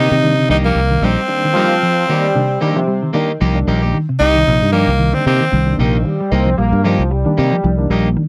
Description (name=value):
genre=afrobeat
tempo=113 BPM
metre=4/4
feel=swing 56% on 16ths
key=C minor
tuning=A4 = 440 Hz
part: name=raspy tenor saxophone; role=melody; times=0.0-5.8 s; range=Bb3 to Eb4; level=-19 LUFS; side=equal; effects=tape echo
part: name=mellow electric guitar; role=arpeggios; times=0.0-8.3 s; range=C3 to G3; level=-22 LUFS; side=equal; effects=none
part: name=electric guitar at the edge of break-up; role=stabs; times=0.0-8.1 s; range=Bb3 to G4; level=-23 LUFS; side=equal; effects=none
part: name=fingered electric bass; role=bass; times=0.0-8.1 s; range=Bb1 to C3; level=-18 LUFS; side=equal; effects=none
part: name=bright reed electric piano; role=accompaniment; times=0.2-8.2 s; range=Eb3 to D4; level=-26 LUFS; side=equal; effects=overdrive, fast tremolo
part: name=mellow trombone section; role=second line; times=1.5-8.2 s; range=C3 to C4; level=-22 LUFS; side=equal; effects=none
room=light reverb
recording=dry, close 1970s-style studio recording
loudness=-15 LUFS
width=mono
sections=0.0-3.4 A section; 3.4-8.3 B section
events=none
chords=0.0 Cm7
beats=0.23 0.76 | 1.29 1.82 2.35 2.88 | 3.41 3.94 4.46 4.99 | 5.52 6.05 6.58 7.11 | 7.64 8.17